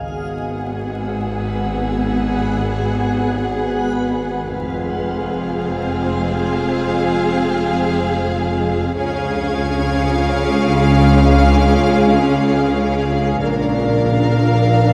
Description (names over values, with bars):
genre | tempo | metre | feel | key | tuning
cinematic, suspense film score | free time | none | none | G# dorian | A4 = 440 Hz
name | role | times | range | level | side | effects
backwards swelling texture | sustained chords | 0.0-14.9 s | C#4 to F#5 | -28 LUFS | equal | built-in reverb
bowed-like drone | drone | 0.0-14.9 s | G#1 to F2 | -28 LUFS | equal | built-in reverb
warm studio violin section | melody | 0.1-14.9 s | F5 to F#5 | -28 LUFS | equal | none
warm studio violin section | second line | 0.1-14.9 s | G#4 to A#4 | -27 LUFS | equal | none
warm studio viola section | accompaniment | 0.1-14.9 s | B3 to D4 | -26 LUFS | equal | none
mellow French horn section | sustained chords | 0.1-14.9 s | E#3 to F#4 | -25 LUFS | equal | none
clear studio cello section | bass | 0.1-14.9 s | F2 to C#3 | -27 LUFS | equal | none
dark studio double bass section | bass | 0.1-14.9 s | F1 to C#2 | -23 LUFS | equal | none
warm studio violin section | texture | 0.1-14.9 s | A#5 to G#6 | -38 LUFS | equal | none
room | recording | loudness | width
wet scoring stage reverb, RT60 2.0 s | vinyl crackle | -17 LUFS | mono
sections
0.1-14.9 A section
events
none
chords
0.1 G#m7; 4.5 Fm; 9.0 C#; 13.4 A#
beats
free time